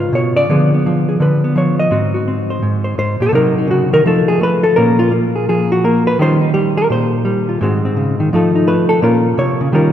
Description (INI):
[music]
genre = solo jazz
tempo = 169 BPM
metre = 4/4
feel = swing 63% on 8ths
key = Ab mixolydian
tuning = A4 = 440 Hz
[part]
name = hollow-body jazz guitar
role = solo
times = 0.0-9.9 s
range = Ab2 to Eb5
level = -12 LUFS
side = equal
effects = none
[sound]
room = wet church reverb, RT60 3.8 s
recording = recorded in a church or concert hall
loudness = -12 LUFS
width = side -10 dB against mid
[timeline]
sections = 0.0-9.9 A section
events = hollow-body jazz guitar solo 0.0-9.9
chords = 0.5 Ddim7; 1.9 Ab7; 3.3 Cdim; 4.0 F7#9; 4.8 Bbm7; 6.2 Eb9; 7.6 Ab7; 8.3 F7#11; 9.0 Bbm